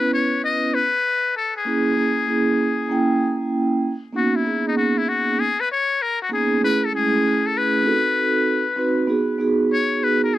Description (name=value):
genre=hip hop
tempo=97 BPM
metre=4/4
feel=swing 65% on 16ths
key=G# minor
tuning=A4 = 440 Hz
part: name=trumpet with metal mute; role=melody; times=0.0-10.4 s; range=D#4 to D#5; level=-21 LUFS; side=left 4 dB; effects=tape echo
part: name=vibraphone with soft mallets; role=accompaniment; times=0.0-10.3 s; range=G#3 to G5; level=-20 LUFS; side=right 2 dB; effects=none
room=little or no reverb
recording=dry, close 1970s-style studio recording, vinyl crackle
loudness=-18 LUFS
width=side -14 dB against mid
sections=0.0-4.1 A section; 4.1-10.4 B section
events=muted trumpet solo 4.1-10.4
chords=0.0 Bsus4; 1.7 A#m7b5; 2.9 A#dim7; 4.1 G#m11; 6.6 Amaj9/G#; 7.9 B7b9; 9.1 B69